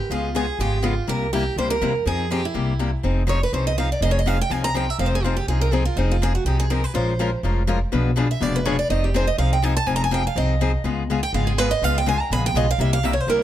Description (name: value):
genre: acoustic string swing (jazz manouche)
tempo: 246 BPM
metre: 4/4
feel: swing 55% on 8ths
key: F minor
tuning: A4 = 440 Hz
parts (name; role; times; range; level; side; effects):
- picked steel-string acoustic guitar; melody; 0.0-13.4 s; Eb4 to Cb6; -24 LUFS; right 3 dB; plate reverb, tape echo
- picked steel-string acoustic guitar; accompaniment; 0.1-13.4 s; B2 to B4; -25 LUFS; left 5 dB; none
- upright bass; bass; 0.1-13.4 s; F1 to F2; -22 LUFS; equal; none
room: light reverb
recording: close, detailed microphones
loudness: -19 LUFS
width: side -12 dB against mid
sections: 0.0-3.0 A section; 3.0-13.4 B section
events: steel-string acoustic guitar solo 3.0-13.4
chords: 0.0 Db7; 1.1 C7; 2.1 Fm7; 2.6 C7; 3.0 Fm7; 6.9 Bbm9; 7.9 Bdim7; 8.9 Fm7; 10.8 Db7; 12.8 C7